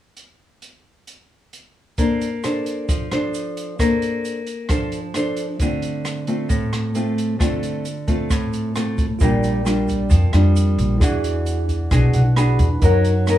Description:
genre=bossa nova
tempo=133 BPM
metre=4/4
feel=straight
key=Bb major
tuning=A4 = 440 Hz
part: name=open jazz drum kit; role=drums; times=0.2-13.4 s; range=hi-hat, kick drum, rim click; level=-23 LUFS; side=equal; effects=none
part: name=nylon-string guitar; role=accompaniment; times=2.0-13.4 s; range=A2 to C5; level=-21 LUFS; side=equal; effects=none
part: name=egg shaker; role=percussion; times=2.0-13.4 s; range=none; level=-42 LUFS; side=right 7 dB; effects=none
part: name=tine electric piano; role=accompaniment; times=9.2-13.4 s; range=Eb4 to B5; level=-26 LUFS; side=right 5 dB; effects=slow stereo tremolo
part: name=upright bass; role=bass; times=9.2-13.4 s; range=Bb1 to Gb2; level=-17 LUFS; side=equal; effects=none
room=little or no reverb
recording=small room ambience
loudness=-17 LUFS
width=side -12 dB against mid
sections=0.2-2.0 A section; 2.0-9.2 B section; 9.2-13.4 C section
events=tine electric piano fill 11.9-12.8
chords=0.2 N.C.; 2.0 Bbmaj9; 5.6 Dm7; 9.2 Bb6; 11.0 E9; 12.8 Gb6

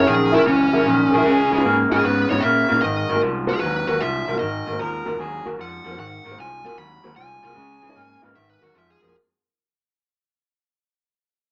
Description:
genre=blues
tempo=152 BPM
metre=4/4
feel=swing 68% on 8ths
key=unclear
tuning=A4 = 438 Hz
part: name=smooth overdriven lead guitar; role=melody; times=0.0-9.1 s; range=Db4 to Cb6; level=-26 LUFS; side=equal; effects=none
part: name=dark upright piano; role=accompaniment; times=0.0-9.1 s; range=C4 to Db5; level=-26 LUFS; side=equal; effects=none
part: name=electric guitar through a small old amp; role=riff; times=0.0-9.1 s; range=Gb2 to Cb4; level=-24 LUFS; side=equal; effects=none
part: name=fingered electric bass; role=bass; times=0.0-9.1 s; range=Ab1 to Bb2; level=-32 LUFS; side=equal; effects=none
part: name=warm harmonica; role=second line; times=1.1-1.8, 4.8-5.5 s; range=Ab4 to Bb4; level=-27 LUFS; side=equal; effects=overdrive
room=wet club reverb, RT60 0.7 s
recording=none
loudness=-19 LUFS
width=mono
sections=0.0-9.1 A section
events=fade-out 0.0-9.1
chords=0.0 Gb7; 1.2 Db7; 2.8 Ab7; 7.6 Db; 8.3 Ab7

